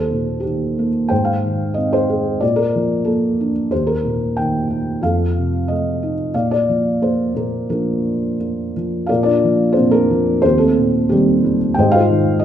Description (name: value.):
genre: classical, lyrical solo piano.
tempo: 90 BPM.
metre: 4/4.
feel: rubato.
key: Bb major.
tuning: A4 = 439 Hz.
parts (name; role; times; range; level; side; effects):
felt-muted upright piano; solo; 0.0-12.4 s; Eb2 to G5; -15 LUFS; equal; none.
room: moderate concert hall reverb, RT60 2.1 s.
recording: minimal, uncompressed stereo recording.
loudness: -15 LUFS.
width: side -10 dB against mid.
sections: 0.0-9.1 A section; 9.1-12.4 A section.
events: none.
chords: 0.0 Eb; 1.1 Ab; 2.4 Bb; 3.7 Eb; 5.0 F7; 6.3 Bb; 10.4 Eb6; 11.8 Ab.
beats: 0.44 | 1.11 1.77 2.42 3.07 | 3.71 4.37 5.02 5.68 | 6.34 7.00 7.67 8.38 | 9.09 9.77 10.44 11.11 | 11.78 12.43.